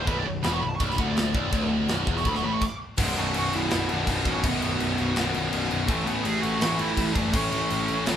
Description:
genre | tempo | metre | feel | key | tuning
heavy metal | 165 BPM | 4/4 | straight | unclear | A4 = 439 Hz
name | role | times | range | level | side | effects
high-gain lead guitar | melody | 0.0-8.0 s | G#3 to D6 | -30 LUFS | right 4 dB | distortion
heavy high-gain guitar | riff | 0.0-8.2 s | B1 to A3 | -28 LUFS | left 4 dB | distortion
heavy high-gain guitar | riff | 0.0-2.6 s | B1 to A2 | -31 LUFS | right 8 dB | distortion
fuzz picked electric bass | bass | 0.0-8.2 s | B0 to A1 | -31 LUFS | equal | overdrive
tight metal drum kit | drums | 0.1-8.2 s | crash cymbal, kick drum, snare drum | -29 LUFS | equal | none
high-gain distorted guitar | riff | 3.0-8.2 s | B1 to A3 | -30 LUFS | right 3 dB | distortion
room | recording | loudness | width
light reverb | band playing live in one room, lossy compression artefacts | -23 LUFS | side -9 dB against mid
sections
0.0-3.0 A section; 3.0-8.2 B section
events
lead electric guitar solo 0.0-3.0; stop 2.6-3.0; half time 3.0-8.2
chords
0.0 Bm; 3.0 B5; 5.9 A

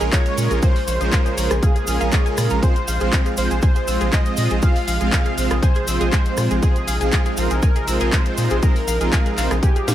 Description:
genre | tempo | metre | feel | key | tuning
progressive house | 120 BPM | 4/4 | straight | unclear | A4 = 439 Hz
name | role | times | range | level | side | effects
wide unison lead | melody | 0.0-9.9 s | G4 to F5 | -26 LUFS | equal | analog chorus, cassette tape, tape echo
supersaw pad | sustained chords | 0.0-9.9 s | C3 to F4 | -30 LUFS | equal | sidechain pumping
tight sequenced synth | arpeggios | 0.0-9.9 s | Ab4 to E6 | -29 LUFS | equal | chorus, sidechain pumping, tape echo
soft supersaw | stabs | 0.0-9.9 s | Ab3 to F5 | -25 LUFS | right 2 dB | sidechain pumping, tape echo
round analog bass | bass | 0.0-9.9 s | Bb1 to Bb2 | -21 LUFS | equal | sidechain pumping
house drum kit | drums | 0.0-9.9 s | handclaps, hi-hat, rim click, snare drum | -26 LUFS | left 1 dB | sidechain pumping on hats
cabasa | percussion | 0.0-9.9 s | none | -33 LUFS | right 2 dB | none
electronic kick drum | drums | 0.1-9.7 s | none | -17 LUFS | equal | none
room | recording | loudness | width
light reverb | none | -16 LUFS | side -12 dB against mid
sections
0.0-9.9 A section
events
none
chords
0.0 Bbm7; 2.6 Fm/Bb

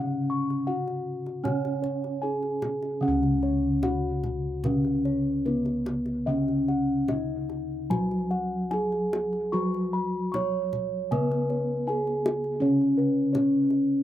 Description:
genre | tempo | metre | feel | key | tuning
Javanese gamelan | 75 BPM | 4/4 | uneven beats | C# slendro | A4 = 440 Hz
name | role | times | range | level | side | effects
gamelan-type bronze metallophone | melody | 0.0-14.0 s | B3-40c to C#5 | -26 LUFS | equal | slapback echo
gamelan-type bronze metallophone | accompaniment | 0.0-14.0 s | C#3 to C#4 | -32 LUFS | right 1 dB | none
gamelan-type bossed gongs | arpeggios | 0.0-13.7 s | B4-40c to C#6 | -36 LUFS | left 2 dB | slapback echo
gamelan-type bossed gongs | bass | 0.0-14.0 s | C#2 to F#4-20c | -32 LUFS | equal | none
kendang | percussion | 0.5-13.8 s | none | -34 LUFS | left 1 dB | none
room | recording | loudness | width
little or no reverb | recorded outdoors, with no room sound | -24 LUFS | side -12 dB against mid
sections
0.0-3.0 A section; 3.0-14.0 B section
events
none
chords
none

